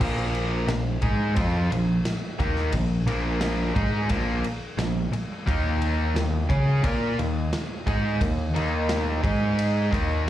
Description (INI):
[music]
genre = classic rock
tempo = 88 BPM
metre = 4/4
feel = straight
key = unclear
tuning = A4 = 440 Hz
[part]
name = distorted electric guitar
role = riff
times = 0.0-10.3 s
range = Bb2 to Db5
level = -27 LUFS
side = equal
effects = overdrive, slapback echo
[part]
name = growling picked electric bass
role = bass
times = 0.0-10.3 s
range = Bb1 to Db3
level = -25 LUFS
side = equal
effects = overdrive
[part]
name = big rock drum kit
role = drums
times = 0.0-10.1 s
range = crash cymbal, kick drum, ride cymbal, snare drum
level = -29 LUFS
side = equal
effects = none
[sound]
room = small room ambience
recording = live gig heard through the venue's PA, cassette tape, club reverb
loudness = -22 LUFS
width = side -12 dB against mid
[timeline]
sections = 0.0-10.3 A section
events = none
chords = 0.0 Bb5; 5.5 Eb5; 9.2 Ab5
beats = | 0.01 0.69 1.38 2.06 | 2.74 3.42 4.11 4.79 | 5.47 6.16 6.84 7.52 | 8.21 8.89 9.58 10.26